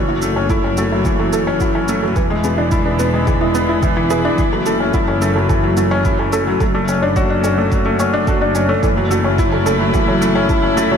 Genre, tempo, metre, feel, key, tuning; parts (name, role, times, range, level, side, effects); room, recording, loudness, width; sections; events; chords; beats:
piano and strings electronica; 108 BPM; 4/4; straight; F# minor; A4 = 444 Hz
warm string quartet; sustained chords; 0.0-11.0 s; D3 to C#5; -23 LUFS; right 1 dB; sidechain pumping
felt-muted upright piano; riff; 0.0-11.0 s; E3 to G#4; -17 LUFS; left 1 dB; ping-pong delay
warm studio double bass section; bass; 0.0-11.0 s; E1 to F#1; -22 LUFS; equal; sidechain pumping
soft round pluck; arpeggios; 0.1-11.0 s; E4 to E5; -23 LUFS; right 2 dB; chorus, sidechain pumping, ping-pong delay
shaker; drums; 0.2-10.9 s; -35 LUFS; right 4 dB
electronic kick drum; drums; 0.5-10.6 s; -19 LUFS; right 1 dB
moderate cathedral reverb, RT60 5.8 s; dreamy mix soaked in reverb; -14 LUFS; side -7 dB against mid
0.0-11.0 A section
fade-in on string quartet 0.0-11.0
0.0 F#m7; 2.2 E7; 4.4 F#m7; 6.6 Dmaj7/F#; 8.8 F#m7
0.50 1.05 1.61 | 2.16 2.72 3.27 3.83 | 4.38 4.94 5.50 6.05 | 6.61 7.16 7.72 8.27 | 8.83 9.38 9.94 10.50